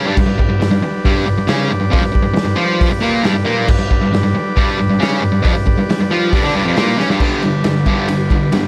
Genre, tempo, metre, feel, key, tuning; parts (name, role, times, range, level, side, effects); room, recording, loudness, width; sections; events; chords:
garage rock duo or trio; 136 BPM; 4/4; straight; G mixolydian; A4 = 438 Hz
combo organ; sustained chords; 0.0-8.7 s; G4 to A5; -25 LUFS; equal
fuzz guitar; riff; 0.0-8.7 s; F2 to F4; -18 LUFS; equal; distortion
raw garage drum kit; drums; 0.2-8.6 s; crash cymbal, hi-hat, kick drum, ride cymbal, snare drum; -19 LUFS; equal
light reverb; -15 LUFS; mono
0.0-7.2 A section; 7.2-8.7 B section
transistor combo organ fill 0.0; drum fill 7.0
0.0 G